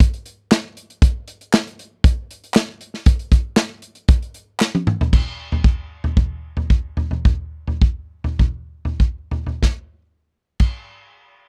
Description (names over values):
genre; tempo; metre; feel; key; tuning
folk; 92-118 BPM; 4/4; straight; none; none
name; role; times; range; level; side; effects
natural country drum kit; drums; 0.0-10.8 s; crash cymbal, hi-hat, kick drum, snare drum, toms; -18 LUFS; equal; none
group handclap; percussion; 0.5-4.7 s; none; -25 LUFS; equal; none
room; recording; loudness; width
little or no reverb; dry, close 1970s-style studio recording; -20 LUFS; mono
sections
0.0-5.1 A section; 5.1-9.6 B section; 9.6-11.5 C section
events
drum fill 4.6-5.1; slowing down 5.1-9.6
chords
none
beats
0.00 0.51 | 1.02 1.53 2.05 2.56 | 3.07 3.58 4.09 4.61 | 5.12 5.64 6.16 6.70 | 7.24 7.81 8.39 9.00 | 9.63 10.28